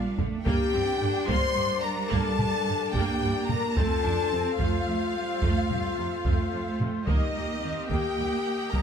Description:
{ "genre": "cinematic, epic orchestral film score", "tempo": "73 BPM (dotted quarters)", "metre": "12/8", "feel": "straight", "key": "G minor", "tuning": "A4 = 440 Hz", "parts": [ { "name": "rich symphonic violin section", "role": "melody", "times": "0.0-8.8 s", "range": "Eb5 to C6", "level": "-34 LUFS", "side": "left 3 dB", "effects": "none" }, { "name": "warm symphonic violin section", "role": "second line", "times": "0.0-8.8 s", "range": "Eb5 to C6", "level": "-36 LUFS", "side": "equal", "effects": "none" }, { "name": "rich symphonic viola section", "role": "accompaniment", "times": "0.0-8.8 s", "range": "C3 to G4", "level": "-35 LUFS", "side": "right 2 dB", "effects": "none" }, { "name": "mellow French horn section", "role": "sustained chords", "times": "0.0-8.8 s", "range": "Eb4 to C5", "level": "-31 LUFS", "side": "left 7 dB", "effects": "none" }, { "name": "warm woodwind section", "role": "sustained chords", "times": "0.0-8.8 s", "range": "Bb3 to Eb5", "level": "-38 LUFS", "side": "right 1 dB", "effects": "none" }, { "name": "rich symphonic cello section", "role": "bass", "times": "0.0-8.8 s", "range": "G3 to D4", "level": "-33 LUFS", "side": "right 3 dB", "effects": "none" }, { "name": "rich symphonic double bass section", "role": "bass", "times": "0.2-8.8 s", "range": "Bb1 to G2", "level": "-32 LUFS", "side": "right 4 dB", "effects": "none" }, { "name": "taiko ensemble", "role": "drums", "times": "0.2-8.8 s", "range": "none", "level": "-30 LUFS", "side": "equal", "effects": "none" } ], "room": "light reverb", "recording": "close, detailed microphones", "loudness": "-24 LUFS", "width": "side -7 dB against mid", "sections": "0.0-8.8 A section", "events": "drum fill 0.0-0.5", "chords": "0.5 Gm; 3.8 F; 7.1 Eb", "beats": "| 0.46 1.29 2.11 2.93 | 3.76 4.59 5.41 6.24 | 7.07 7.89 8.72" }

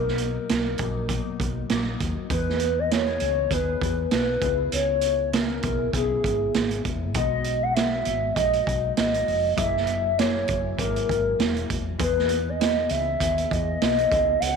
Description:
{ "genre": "indie pop, bedroom pop", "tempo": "99 BPM", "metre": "4/4", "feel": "swing 60% on 16ths", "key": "unclear", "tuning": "A4 = 440 Hz", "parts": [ { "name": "hollow clarinet-like synth lead", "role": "melody", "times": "0.0-14.6 s", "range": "G#4 to F#5", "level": "-24 LUFS", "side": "left 1 dB", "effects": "wide subtle chorus, slapback echo" }, { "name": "mellow electric guitar", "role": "accompaniment", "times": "0.0-14.6 s", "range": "B2 to G#4", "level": "-32 LUFS", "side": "left 13 dB", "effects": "ensemble chorus, warbly pitch drift" }, { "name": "woody fretless electric bass", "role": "bass", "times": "0.0-14.6 s", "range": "E1 to E2", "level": "-30 LUFS", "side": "equal", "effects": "wide subtle chorus" }, { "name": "raw garage drum kit", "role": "drums", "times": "0.1-14.6 s", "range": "hi-hat, kick drum, snare drum", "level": "-27 LUFS", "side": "right 5 dB", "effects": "none" } ], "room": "moderate plate reverb, RT60 2.5 s", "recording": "1960s-style stereo", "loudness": "-22 LUFS", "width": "side -5 dB against mid", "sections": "0.0-2.3 A section; 2.3-14.6 B section", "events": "none", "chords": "0.0 Bmaj7; 2.3 Emaj7; 4.4 C#m7; 7.1 B6; 9.6 F#9; 12.0 Emaj7", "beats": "0.48 1.09 1.70 | 2.30 2.91 3.51 4.12 | 4.72 5.33 5.94 6.54 | 7.15 7.75 8.36 8.96 | 9.57 10.18 10.78 11.39 | 11.99 12.60 13.21 13.81 | 14.42" }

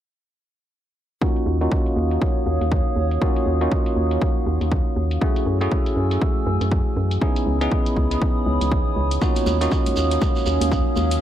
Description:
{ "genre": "deep house", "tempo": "120 BPM", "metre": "4/4", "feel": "swing 59% on 16ths", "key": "unclear", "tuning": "A4 = 440 Hz", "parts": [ { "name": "warbly tape-like pad", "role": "sustained chords", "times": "1.9-11.2 s", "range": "A3 to Fb6", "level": "-28 LUFS", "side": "right 4 dB", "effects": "chorus, built-in reverb, vintage 12-bit sampler grit, sidechain pumping" }, { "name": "bell-like tine electric piano", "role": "stabs", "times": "1.2-11.2 s", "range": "A3 to Ab4", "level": "-24 LUFS", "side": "equal", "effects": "wide subtle chorus, sidechain pumping, low-pass filter, tape echo" }, { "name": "electronic kick drum", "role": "drums", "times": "1.2-10.8 s", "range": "none", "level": "-22 LUFS", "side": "equal", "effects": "none" }, { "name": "warbly tape-like pad", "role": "texture", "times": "3.1-11.2 s", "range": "Fb3 to Eb6", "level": "-34 LUFS", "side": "right 5 dB", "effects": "none" }, { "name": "electronic hi-hat", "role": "drums", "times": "1.4-11.2 s", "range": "none", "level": "-35 LUFS", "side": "left 2 dB", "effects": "low-pass filter on hats, low-pass filter on room" }, { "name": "organ-like FM bass", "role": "bass", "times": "1.5-11.2 s", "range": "Db2 to Gb2", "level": "-22 LUFS", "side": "equal", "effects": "sidechain pumping" }, { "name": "shekere", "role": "percussion", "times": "9.2-11.2 s", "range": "none", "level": "-34 LUFS", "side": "right 4 dB", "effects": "none" }, { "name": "congas", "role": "percussion", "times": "9.5-11.1 s", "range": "none", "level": "-33 LUFS", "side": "left 3 dB", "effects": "none" } ], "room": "light reverb", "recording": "echo-heavy mix", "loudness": "-18 LUFS", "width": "side -11 dB against mid", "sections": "1.2-11.2 A section", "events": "filter sweep on tine electric piano 1.2-11.2", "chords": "1.2 Ebm9; 5.2 Gbm9; 7.2 Dbm9; 9.2 Ebm9", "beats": "| 1.22 1.72 2.21 2.71 | 3.21 3.71 4.21 4.71 | 5.21 5.71 6.21 6.71 | 7.21 7.71 8.21 8.71 | 9.21 9.71 10.21 10.71" }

